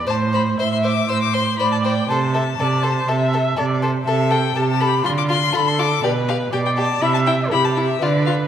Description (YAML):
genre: quick classical-period movement for string quartet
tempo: 121 BPM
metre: 4/4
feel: rubato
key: A minor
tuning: A4 = 441 Hz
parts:
  - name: warm viola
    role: accompaniment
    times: 0.0-8.5 s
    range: F4 to E5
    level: -22 LUFS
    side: right 1 dB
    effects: none
  - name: rich cello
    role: bass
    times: 0.0-8.5 s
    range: A2 to D3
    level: -20 LUFS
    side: right 3 dB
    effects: none
  - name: warm violin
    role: melody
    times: 0.1-8.3 s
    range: D5 to E6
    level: -22 LUFS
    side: left 8 dB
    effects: none
  - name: rich violin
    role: second line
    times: 0.1-8.3 s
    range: E4 to C5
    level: -25 LUFS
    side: left 3 dB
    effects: none
room: wet scoring stage reverb, RT60 1.4 s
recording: none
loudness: -16 LUFS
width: side -9 dB against mid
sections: 0.0-8.5 A section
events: none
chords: 0.1 Am; 2.1 Am/C; 5.1 Dm; 6.0 G/B; 7.0 C